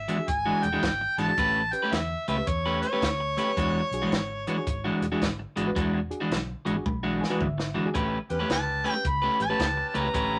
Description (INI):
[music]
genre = electric blues shuffle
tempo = 110 BPM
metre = 4/4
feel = swing 64% on 8ths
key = E mixolydian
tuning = A4 = 440 Hz
[part]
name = mellow harmonica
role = melody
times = 0.0-5.0, 8.5-10.4 s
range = C#5 to B5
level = -30 LUFS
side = equal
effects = overdrive
[part]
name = vintage muted fingered electric bass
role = bass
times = 0.0-10.4 s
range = E1 to E2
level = -37 LUFS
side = equal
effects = none
[part]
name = bright reed electric piano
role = accompaniment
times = 0.1-10.2 s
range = C#4 to C#6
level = -38 LUFS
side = equal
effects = overdrive
[part]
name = electric guitar at the edge of break-up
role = riff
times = 0.1-10.4 s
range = E3 to B4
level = -30 LUFS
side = equal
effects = none
[part]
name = compact cocktail drum kit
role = drums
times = 0.1-10.3 s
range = hi-hat, kick drum, snare drum, toms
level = -34 LUFS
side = equal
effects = none
[part]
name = clear saxophone section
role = stabs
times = 8.3-10.3 s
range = C#4 to B4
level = -39 LUFS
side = equal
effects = none
[sound]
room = light reverb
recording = none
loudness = -27 LUFS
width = mono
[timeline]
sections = 0.0-10.4 A section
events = reed electric piano fill 6.3-8.0; drum fill 6.9-8.0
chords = 0.0 E9; 1.4 A9; 3.6 E9; 8.0 A9